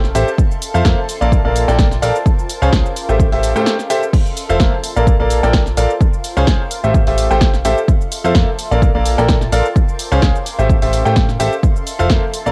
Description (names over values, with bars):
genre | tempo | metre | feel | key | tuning
piano house | 128 BPM | 4/4 | swing 54% on 16ths | F major | A4 = 440 Hz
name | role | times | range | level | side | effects
plucky analog bass | bass | 0.0-12.5 s | F1 to A2 | -20 LUFS | equal | sidechain pumping
punchy analog drum machine | drums | 0.0-12.5 s | crash cymbal, hi-hat, shaker, snare drum | -25 LUFS | equal | overdrive, cassette tape
granular cloud pad | texture | 0.0-12.5 s | F5 to A5 | -29 LUFS | equal | built-in reverb, sidechain pumping, cassette tape
bright concert grand piano | riff | 0.1-12.5 s | F3 to G5 | -20 LUFS | equal | sidechain pumping, cassette tape
electronic kick drum | drums | 0.4-12.2 s | none | -16 LUFS | equal | overdrive, cassette tape
room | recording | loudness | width
little or no reverb | home recording on cassette | -15 LUFS | mono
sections
0.0-12.5 A section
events
break 3.7-4.1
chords
0.4 Fmaj7; 1.1 Bbmaj7; 2.3 Dbmaj7; 3.0 Am7; 4.1 Fmaj7; 4.8 Bbmaj7; 6.0 Dbmaj7; 6.7 Am7; 7.9 Fmaj7; 8.6 Bbmaj7; 9.8 Dbmaj7; 10.5 Am7; 11.6 Fmaj7